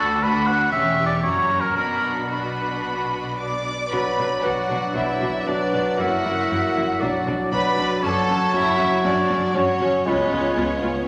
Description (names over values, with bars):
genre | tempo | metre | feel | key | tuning
quick classical-period movement for symphony orchestra | 117 BPM | 4/4 | rubato | B minor | A4 = 439 Hz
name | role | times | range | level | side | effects
clear chamber violin section | melody | 0.0-11.1 s | C#5 to D6 | -33 LUFS | equal | none
rich chamber violin section | second line | 0.0-11.1 s | C#4 to D5 | -32 LUFS | equal | none
warm oboe | second line | 0.0-10.8 s | A4 to F#5 | -26 LUFS | equal | none
clear symphonic viola section | accompaniment | 0.0-10.9 s | B3 to F#4 | -33 LUFS | equal | none
clear chamber double bass section | bass | 0.0-10.9 s | E1 to D2 | -38 LUFS | equal | none
warm symphonic cello section | bass | 0.0-10.9 s | C#2 to B2 | -32 LUFS | equal | none
silver concert flute | second line | 3.4-11.1 s | C#5 to D6 | -32 LUFS | equal | none
warm clarinet | second line | 3.9-10.8 s | E#4 to B4 | -32 LUFS | equal | none
warm bassoon | accompaniment | 3.9-10.8 s | F#3 to G#3 | -29 LUFS | equal | none
mellow French horn section | sustained chords | 3.9-11.1 s | F#3 to F#4 | -30 LUFS | equal | none
room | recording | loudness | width
wet scoring stage reverb, RT60 1.6 s | none | -21 LUFS | mono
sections
0.0-3.9 A section; 3.9-11.1 B section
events
none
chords
0.0 Bm/D; 0.7 C#dim/E; 1.2 F#; 1.8 Bm; 6.0 F#7; 7.0 Bm; 8.0 F#m; 10.1 C#7